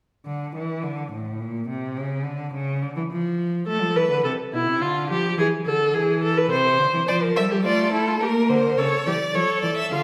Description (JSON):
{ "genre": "classical, baroque-style fugue for string quartet", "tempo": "106 BPM", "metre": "3/4", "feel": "straight", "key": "D minor", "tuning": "A4 = 439 Hz", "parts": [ { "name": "rich cello", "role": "bass", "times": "0.3-10.0 s", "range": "A2 to Bb3", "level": "-27 LUFS", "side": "equal", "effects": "none" }, { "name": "warm viola", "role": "accompaniment", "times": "3.7-10.0 s", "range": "E4 to C5", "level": "-24 LUFS", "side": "equal", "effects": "none" }, { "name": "rich violin", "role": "second line", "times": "7.1-10.0 s", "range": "A4 to F5", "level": "-25 LUFS", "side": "equal", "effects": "none" } ], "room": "wet recital hall reverb, RT60 1.3 s", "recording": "recorded in a church or concert hall", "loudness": "-23 LUFS", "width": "mono", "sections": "0.3-10.0 A section", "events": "none", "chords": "0.3 D5; 1.4 Bbsus2; 2.0 N.C.; 3.7 Am; 4.8 Dm; 5.4 E; 6.5 Csus2; 7.1 Dm/F; 8.2 Gm/Bb; 8.8 A" }